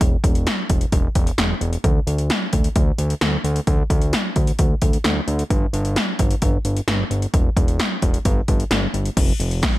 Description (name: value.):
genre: synth-pop.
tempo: 131 BPM.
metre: 4/4.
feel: straight.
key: D minor.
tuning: A4 = 441 Hz.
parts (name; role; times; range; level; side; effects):
fat analog bass; bass; 0.0-9.6 s; E1 to D2; -21 LUFS; equal; none.
80s electronic pad drums; drums; 0.0-9.7 s; crash cymbal, hi-hat, kick drum, snare drum; -19 LUFS; equal; none.
room: little or no reverb.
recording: none.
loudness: -17 LUFS.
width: side -17 dB against mid.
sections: 0.0-9.2 A section.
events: none.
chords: none.